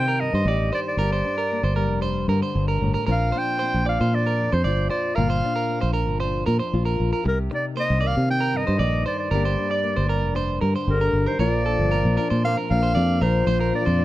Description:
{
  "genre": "highlife",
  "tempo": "115 BPM",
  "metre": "4/4",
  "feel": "straight",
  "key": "Bb major",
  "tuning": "A4 = 438 Hz",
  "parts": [
    { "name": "clear clarinet", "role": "melody", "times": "0.0-14.0 s", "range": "Bb4 to G5", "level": "-25 LUFS", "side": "equal", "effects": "none" },
    { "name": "nylon-string guitar", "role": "accompaniment", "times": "0.0-14.0 s", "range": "F2 to G4", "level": "-29 LUFS", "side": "left 5 dB", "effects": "none" },
    { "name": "electric guitar at the edge of break-up", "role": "arpeggios", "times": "0.0-14.0 s", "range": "A4 to D5", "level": "-28 LUFS", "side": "right 5 dB", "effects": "slapback echo" },
    { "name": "fingered electric bass", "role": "bass", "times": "0.0-14.0 s", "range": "F1 to C3", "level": "-22 LUFS", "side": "equal", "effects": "none" },
    { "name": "breathy trombone", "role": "second line", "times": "10.9-14.0 s", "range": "D3 to Bb3", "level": "-29 LUFS", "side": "left 5 dB", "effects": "none" }
  ],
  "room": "small room ambience",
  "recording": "dry, close 1970s-style studio recording",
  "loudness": "-20 LUFS",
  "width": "side -15 dB against mid",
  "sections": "0.0-11.4 A section; 11.4-14.0 B section",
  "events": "none",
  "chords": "0.0 Cm7; 1.0 Gm; 3.1 Bbadd9; 7.2 Cm7; 9.3 Gm; 11.4 Bbadd9"
}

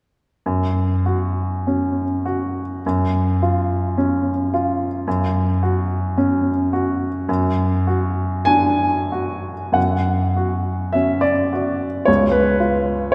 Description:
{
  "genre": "classical, romantic nocturne for solo piano",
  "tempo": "44-56 BPM",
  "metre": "4/4",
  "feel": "rubato",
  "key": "unclear",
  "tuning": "A4 = 440 Hz",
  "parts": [
    { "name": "warm upright piano", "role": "solo", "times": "0.5-13.1 s", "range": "C#2 to G#5", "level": "-20 LUFS", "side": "equal", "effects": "none" }
  ],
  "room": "wet church reverb, RT60 2.7 s",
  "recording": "none",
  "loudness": "-20 LUFS",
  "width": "mono",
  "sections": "0.4-9.8 A section; 9.8-13.1 B section",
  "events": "none",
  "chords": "0.4 F#5; 2.8 C#/F#; 5.1 F#5; 7.3 F#sus2; 9.8 F#5; 12.1 C#"
}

